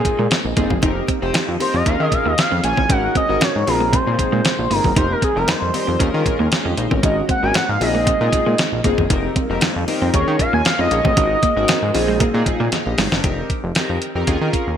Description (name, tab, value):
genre	early-eighties boogie funk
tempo	116 BPM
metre	4/4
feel	straight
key	F minor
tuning	A4 = 440 Hz
part	expressive synth lead	melody	0.0-12.2 s	Ab4 to Ab5	-21 LUFS	equal	chorus
part	chorused polysynth	accompaniment	0.0-14.7 s	C4 to F5	-23 LUFS	left 2 dB	none
part	soft string machine	sustained chords	0.0-13.2 s	C3 to Gb4	-29 LUFS	left 1 dB	none
part	clean 12-bit digital drum machine	drums	0.0-14.7 s	hi-hat, kick drum, snare drum	-20 LUFS	equal	none
part	clean electric guitar	riff	0.1-13.1 s	Ab3 to Eb4	-26 LUFS	right 4 dB	wide subtle chorus
part	congas	percussion	0.1-13.2 s	none	-31 LUFS	left 3 dB	none
part	fat analog bass	bass	0.2-14.8 s	F1 to Eb3	-22 LUFS	equal	none
room	moderate plate reverb, RT60 1.8 s, digital ambience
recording	bright 1980s-style digital production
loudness	-15 LUFS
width	side -9 dB against mid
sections	0.0-13.2 A section; 13.2-14.8 B section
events	analog synth lead solo 0.0-13.2; drum fill 12.7-13.2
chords	0.0 Bb9sus4; 0.8 F9sus4; 1.9 Eb9sus4; 2.9 Ab9sus4; 3.7 Bb9sus4; 5.0 F9sus4; 6.0 Eb9sus4; 7.0 Ab9sus4; 7.8 Bb9sus4; 9.1 F9sus4; 10.1 Eb9sus4; 11.2 Ab9sus4; 11.9 Bb9sus4; 13.2 F9sus4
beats	0.31 | 0.83 1.34 1.86 2.38 | 2.90 3.41 3.93 4.45 | 4.96 5.48 6.00 6.52 | 7.03 7.55 8.07 8.59 | 9.10 9.62 10.14 10.65 | 11.17 11.69 12.21 12.72 | 13.24 13.76 14.28